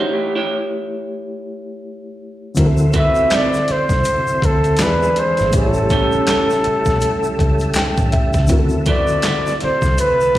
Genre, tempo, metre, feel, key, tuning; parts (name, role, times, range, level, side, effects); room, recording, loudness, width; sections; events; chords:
R&B, neo-soul; 81 BPM; 4/4; swing 60% on 16ths; A minor; A4 = 441 Hz
electric guitar through a small old amp; second line; 0.0-9.5 s; C4 to C#5; -22 LUFS; right 6 dB; lush chorus, slapback echo
reed electric piano; accompaniment; 0.0-10.4 s; D3 to G5; -22 LUFS; left 1 dB; fast tremolo, slapback echo
tonewheel organ; sustained chords; 2.6-10.4 s; C3 to E4; -26 LUFS; equal; chorus vibrato, fast rotary speaker
vintage muted fingered electric bass; bass; 2.6-10.4 s; G#1 to E2; -19 LUFS; equal
boom bap sampler-style drum kit; drums; 2.6-10.4 s; handclaps, hi-hat, kick drum, snare drum; -19 LUFS; equal; overdrive
egg shaker and finger snaps; percussion; 2.6-10.3 s; -33 LUFS; left 3 dB
warm flugelhorn; melody; 3.0-10.4 s; A4 to E5; -17 LUFS; equal; slapback echo, tape echo
light reverb; live gig heard through the venue's PA, recital hall reverb; -14 LUFS; side -14 dB against mid
0.0-10.4 A section
reed electric piano fill 7.4-8.5
0.0 A7; 2.6 D13; 4.8 E7; 5.5 A7; 8.5 D13